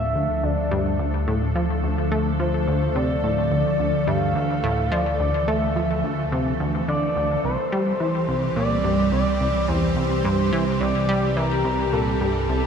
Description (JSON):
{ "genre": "ambient, sequencer-driven space music", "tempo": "107 BPM", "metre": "4/4", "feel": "straight", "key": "D minor", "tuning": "A4 = 441 Hz", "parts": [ { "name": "expressive synth lead", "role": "melody", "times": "0.0-12.7 s", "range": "A4 to F5", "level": "-26 LUFS", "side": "left 1 dB", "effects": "chorus, ping-pong delay" }, { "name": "evolving wavetable pad", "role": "sustained chords", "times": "0.0-12.7 s", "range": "E3 to A4", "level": "-25 LUFS", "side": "right 2 dB", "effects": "ensemble chorus, built-in reverb" }, { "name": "plucky analog bass", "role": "riff", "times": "0.0-12.6 s", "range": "C2 to A3", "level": "-25 LUFS", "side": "equal", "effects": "ping-pong delay" }, { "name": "analog drone", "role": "bass", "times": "0.0-12.7 s", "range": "C2 to D2", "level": "-27 LUFS", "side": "equal", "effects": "chorus" } ], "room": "wet plate reverb, RT60 2.5 s", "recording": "dark, warm production", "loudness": "-20 LUFS", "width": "side -7 dB against mid", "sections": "0.0-12.7 A section", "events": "none", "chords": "0.0 Dm; 7.4 C" }